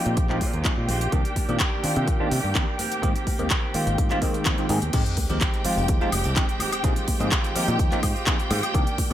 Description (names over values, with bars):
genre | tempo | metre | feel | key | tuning
filtered disco house | 126 BPM | 4/4 | straight | F dorian | A4 = 439 Hz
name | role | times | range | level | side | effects
bell-like tine electric piano | accompaniment | 0.0-9.1 s | Eb3 to Ab4 | -28 LUFS | equal | phaser, sidechain pumping, low-pass filter
rich symphonic string section | sustained chords | 0.0-9.1 s | G4 to G5 | -31 LUFS | left 1 dB | sidechain pumping, low-pass filter
direct-recorded clean electric guitar | riff | 0.0-9.1 s | Eb3 to G4 | -33 LUFS | right 4 dB | sidechain pumping, low-pass filter
modern bright fingered electric bass | bass | 0.1-9.1 s | F1 to C3 | -27 LUFS | equal | sidechain pumping, low-pass filter
house drum kit | drums | 0.1-9.1 s | crash cymbal, handclaps, hi-hat, shaker, woodblock | -28 LUFS | equal | sidechain pumping on hats, studio ambience, sidechain pumping on cymbals, sidechain pumping on perc
maracas and congas | percussion | 0.1-9.1 s | none | -38 LUFS | right 2 dB | none
electronic kick drum | drums | 0.2-9.1 s | none | -24 LUFS | equal | studio ambience
sub drop | sound effects | 4.9-6.8 s | none | -33 LUFS | equal | none
room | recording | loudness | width
light reverb, digital ambience | none | -21 LUFS | side -12 dB against mid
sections
0.0-4.9 A section; 4.9-9.1 B section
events
drop 4.9-9.1; impact 4.9-6.8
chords
0.0 Bb9sus4; 1.1 Cm9; 2.8 Abmaj9; 4.9 Fm9; 6.8 Bb9sus4